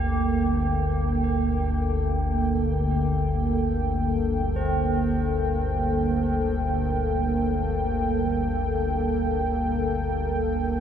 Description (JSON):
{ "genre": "dark ambient drone", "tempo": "free time", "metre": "none", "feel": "none", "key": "G minor", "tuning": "A4 = 440 Hz", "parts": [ { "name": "sweeping resonant pad", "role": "sustained chords", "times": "0.0-10.8 s", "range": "Bb3 to G5", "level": "-26 LUFS", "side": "right 1 dB", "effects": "chorus" }, { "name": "tubular bells", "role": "arpeggios", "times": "0.0-10.8 s", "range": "C4 to G4", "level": "-36 LUFS", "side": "right 1 dB", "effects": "ping-pong delay" }, { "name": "deep rumbling drone", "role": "drone", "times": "0.0-10.8 s", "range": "G1 to D2", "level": "-26 LUFS", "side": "left 1 dB", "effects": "built-in reverb, lush chorus" }, { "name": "bronze singing bowl", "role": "texture", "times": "0.0-10.8 s", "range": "Bb3", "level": "-40 LUFS", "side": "equal", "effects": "none" } ], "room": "wet huge ambient reverb, RT60 7.5 s", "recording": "nothing above 10.4 kHz", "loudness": "-22 LUFS", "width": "side -9 dB against mid", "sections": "0.0-10.8 A section", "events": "none", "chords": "0.0 Gmadd9" }